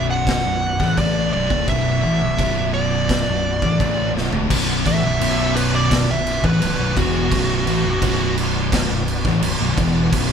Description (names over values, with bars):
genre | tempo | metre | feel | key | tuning
stoner and doom metal | 85 BPM | 4/4 | straight | B minor | A4 = 440 Hz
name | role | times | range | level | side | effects
fuzz lead guitar | melody | 0.0-8.3 s | F#4 to F#5 | -22 LUFS | right 2 dB | distortion
overdriven tonewheel organ | sustained chords | 0.0-10.3 s | B3 to D5 | -32 LUFS | right 2 dB | slow rotary speaker, chorus vibrato
thick fuzz guitar | riff | 0.0-10.3 s | B1 to A3 | -22 LUFS | left 7 dB | distortion
thick fuzz guitar | riff | 0.0-10.3 s | B1 to A3 | -24 LUFS | right 8 dB | distortion
modern bright fingered electric bass | bass | 0.0-10.3 s | B0 to A1 | -26 LUFS | right 1 dB | overdrive
raw garage drum kit | drums | 0.3-10.3 s | crash cymbal, kick drum, snare drum, toms | -22 LUFS | equal | none
room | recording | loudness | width
moderate stone room reverb, RT60 1.0 s | band playing live in one room | -16 LUFS | side -7 dB against mid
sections
0.0-4.5 A section; 4.5-10.3 B section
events
drum fill 4.2-4.5; lead electric guitar solo 4.5-10.3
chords
0.0 Bm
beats
0.27 0.98 | 1.69 2.39 3.10 3.80 | 4.51 5.21 5.92 6.62 | 7.32 8.03 8.73 9.43 | 10.13